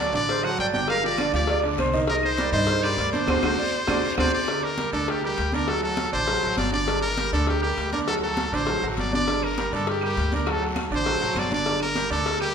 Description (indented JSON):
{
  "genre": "latin, salsa",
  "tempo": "200 BPM",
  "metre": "4/4",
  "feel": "straight",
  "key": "G harmonic minor",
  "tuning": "A4 = 440 Hz",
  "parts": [
    { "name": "brilliant trumpet", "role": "melody", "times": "0.0-12.5 s", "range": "G4 to G5", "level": "-26 LUFS", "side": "left 1 dB", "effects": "none" },
    { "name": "jazz flute", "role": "second line", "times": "0.0-4.4 s", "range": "Bb4 to Eb5", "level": "-27 LUFS", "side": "right 2 dB", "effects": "none" },
    { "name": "bright concert grand piano", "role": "accompaniment", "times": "0.0-12.5 s", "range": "D3 to Eb5", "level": "-27 LUFS", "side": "right 3 dB", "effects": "none" },
    { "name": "upright bass", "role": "bass", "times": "0.0-12.5 s", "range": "G1 to G2", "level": "-30 LUFS", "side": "left 1 dB", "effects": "none" },
    { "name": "congas", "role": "percussion", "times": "0.1-12.5 s", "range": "none", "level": "-33 LUFS", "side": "equal", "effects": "none" },
    { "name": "guiro", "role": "percussion", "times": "0.1-12.5 s", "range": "none", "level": "-39 LUFS", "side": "left 5 dB", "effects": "none" },
    { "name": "cowbell", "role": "percussion", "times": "0.3-12.4 s", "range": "none", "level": "-30 LUFS", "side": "left 3 dB", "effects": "none" },
    { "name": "claves", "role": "percussion", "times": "0.4-4.2, 9.4-12.5 s", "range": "none", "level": "-39 LUFS", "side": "right 5 dB", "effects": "none" }
  ],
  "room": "wet recital hall reverb, RT60 1.3 s",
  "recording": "recorded in a church or concert hall",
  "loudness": "-21 LUFS",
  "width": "side -7 dB against mid",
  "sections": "0.0-4.5 A section; 4.5-12.5 B section",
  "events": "band accent 3.3-4.5",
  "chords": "0.0 D7; 0.9 G7(no3); 2.1 Cm7; 3.3 D7; 4.5 Gm; 5.7 D7; 6.9 Gm; 8.1 D7; 9.3 Gm; 10.5 D7; 11.7 Gm",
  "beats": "0.28 0.58 | 0.89 1.19 1.49 1.78 | 2.08 2.38 2.68 2.98 | 3.28 3.58 3.88 4.18 | 4.48 4.78 5.08 5.38 | 5.68 5.98 6.28 6.58 | 6.88 7.18 7.48 7.78 | 8.07 8.37 8.67 8.97 | 9.27 9.57 9.87 10.17 | 10.47 10.77 11.06 11.36 | 11.66 11.96 12.26"
}